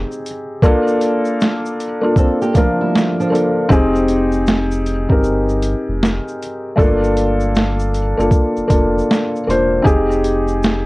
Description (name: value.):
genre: lo-fi hip hop.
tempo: 78 BPM.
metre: 4/4.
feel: swing 65% on 16ths.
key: unclear.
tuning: A4 = 442 Hz.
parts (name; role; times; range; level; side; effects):
felt-muted upright piano; accompaniment; 0.0-10.9 s; F3 to C5; -16 LUFS; left 1 dB; cassette tape, low-pass filter.
saturated sub bass; bass; 0.0-10.9 s; E1 to G1; -21 LUFS; equal; none.
boom bap sampler-style drum kit; drums; 0.1-10.9 s; hi-hat, kick drum, shaker, snare drum; -15 LUFS; equal; overdrive.
flamenco guitar; second line; 2.2-3.7 s; F3 to A4; -23 LUFS; right 4 dB; low-pass filter, analog delay.
room: light reverb.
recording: worn, warbling old tape, cassette tape, warbly pitch drift.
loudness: -13 LUFS.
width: side -21 dB against mid.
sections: 0.0-10.9 A section.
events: none.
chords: 0.0 Fm7 (rootless); 0.6 Gm9 (rootless); 3.7 Fm7; 6.8 Gm7; 9.9 Fm7.